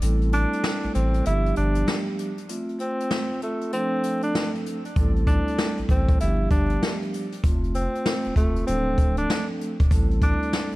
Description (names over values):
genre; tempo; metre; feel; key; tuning
hip hop, boom-bap hip-hop; 97 BPM; 4/4; swing 63% on 16ths; A minor; A4 = 441 Hz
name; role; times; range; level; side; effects
vibraphone with soft mallets; accompaniment; 0.0-10.8 s; F3 to A4; -28 LUFS; right 1 dB; high-pass filter, low-pass filter
soft dub sub bass; bass; 0.0-10.8 s; D1 to A1; -24 LUFS; equal; none
jazz brush drum kit; drums; 0.0-10.8 s; hi-hat, kick drum, snare drum; -24 LUFS; equal; none
breathy tenor saxophone; melody; 0.3-10.8 s; A3 to E4; -28 LUFS; equal; high-pass filter, low-pass filter, tape echo
room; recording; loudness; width
small room ambience; vinyl crackle; -21 LUFS; side -18 dB against mid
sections
0.0-10.8 A section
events
break 0.0-5.0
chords
0.0 Am7; 1.3 G7; 2.5 F; 3.7 Dm7; 5.0 Am7; 6.2 G7; 7.4 F; 8.7 Dm7; 9.9 Am7